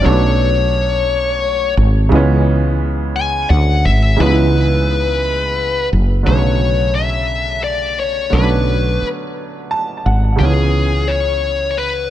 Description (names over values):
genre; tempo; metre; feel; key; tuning
slow six-eight R&B; 58 BPM (dotted quarters); 6/8; straight; B dorian; A4 = 440 Hz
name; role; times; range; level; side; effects
high-gain lead guitar; melody; 0.0-12.1 s; G#4 to G#5; -18 LUFS; left 5 dB; distortion, dub echo
clear baby grand piano; accompaniment; 0.0-12.1 s; C#3 to A5; -20 LUFS; right 4 dB; dub echo
woody fretless electric bass; bass; 0.1-12.1 s; F#1 to D2; -15 LUFS; equal; none
room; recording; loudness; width
light reverb, studio reverb; echo-heavy mix, nothing above 10.4 kHz; -13 LUFS; side -12 dB against mid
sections
0.0-6.3 A section; 6.3-12.1 B section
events
grand piano fill 9.4-10.4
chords
0.0 Bm9; 2.1 C#m7; 6.3 Bm9; 10.4 C#m7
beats
| 0.04 1.08 | 2.11 3.15 | 4.18 5.22 | 6.25 7.29 | 8.32 9.35 | 10.39 11.42